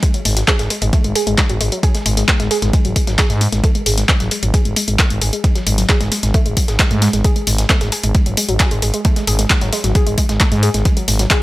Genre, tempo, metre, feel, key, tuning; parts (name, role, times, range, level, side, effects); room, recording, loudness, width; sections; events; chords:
driving peak-time techno; 133 BPM; 4/4; straight; A4 = 440 Hz
warbly dusty pluck; riff; 0.0-11.4 s; F#3 to G#4; -22 LUFS; equal; chorus, sidechain pumping, analog delay
dusty soul sampler-style drum kit; drums; 0.0-11.4 s; hi-hat, ride cymbal, snare drum; -29 LUFS; right 2 dB; high-pass filter on snare, studio reverb, sidechain pumping on cymbals, high-pass filter on cymbals, sidechain pumping on hats, high-pass filter on hats
electronic kick drum; drums; 0.0-11.4 s; -15 LUFS; equal; overdrive, studio reverb
punchy analog drum machine; drums; 0.0-11.4 s; handclaps, hi-hat; -18 LUFS; left 1 dB; overdrive, studio reverb, sidechain pumping on hats
growling FM bass; bass; 0.3-11.3 s; G#1 to G#2; -17 LUFS; equal; sidechain pumping
riser; sound effects; 11.4 s; barely audible
little or no reverb; dry, gritty hardware recording; -13 LUFS; side -18 dB against mid
0.0-11.4 A section